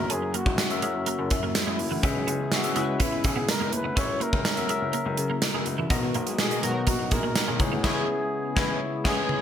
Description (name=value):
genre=1980s-style pop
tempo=124 BPM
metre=4/4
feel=straight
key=C# dorian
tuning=A4 = 440 Hz
part: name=breathy flugelhorn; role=melody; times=0.0-9.4 s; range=E4 to C#5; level=-32 LUFS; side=equal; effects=ping-pong delay
part: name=bell-like tine electric piano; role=accompaniment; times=0.0-9.4 s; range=B2 to E5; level=-30 LUFS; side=left 5 dB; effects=phaser
part: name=warm analog pad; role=sustained chords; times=0.0-9.4 s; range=C#3 to A#4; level=-36 LUFS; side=equal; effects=none
part: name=twelve-string electric guitar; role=riff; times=0.0-7.8 s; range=E3 to C#4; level=-35 LUFS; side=right 6 dB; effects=ensemble chorus, ping-pong delay
part: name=warm baby grand piano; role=bass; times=0.0-9.2 s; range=F#1 to C#3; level=-33 LUFS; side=left 2 dB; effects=none
part: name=gated 80s drum kit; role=drums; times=0.1-9.4 s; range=crash cymbal, hi-hat, kick drum, snare drum, toms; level=-26 LUFS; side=right 1 dB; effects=gated reverb
part: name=tambourine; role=percussion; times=0.6-7.5 s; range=none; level=-37 LUFS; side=right 6 dB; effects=none
part: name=analog synth brass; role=stabs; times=2.2-9.2 s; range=D#3 to B4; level=-36 LUFS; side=right 2 dB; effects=chorus, tremolo
room=light reverb, small room ambience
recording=bright 1980s-style digital production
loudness=-23 LUFS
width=side -9 dB against mid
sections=0.0-9.4 A section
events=band accent 7.8-9.4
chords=0.0 F#7; 2.0 C#m7; 4.0 F#7/C#; 5.9 Bmaj7; 7.6 C#m7